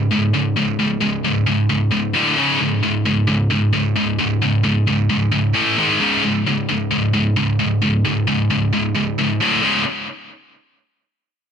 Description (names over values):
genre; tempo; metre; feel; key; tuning
metal; 132 BPM; 4/4; straight; unclear; A4 = 442 Hz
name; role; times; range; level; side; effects
scooped high-gain guitar; solo; 0.0-9.8 s; C#2 to A3; -16 LUFS; equal; distortion, digital delay
room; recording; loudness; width
light reverb; nothing above 10.5 kHz; -16 LUFS; side -7 dB against mid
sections
0.0-9.6 A section; 9.6-11.5 B section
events
none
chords
0.0 C#5; 2.1 D5; 2.4 C#5; 5.6 A5; 5.8 G#5; 6.0 C#5; 9.4 D5; 9.6 C#5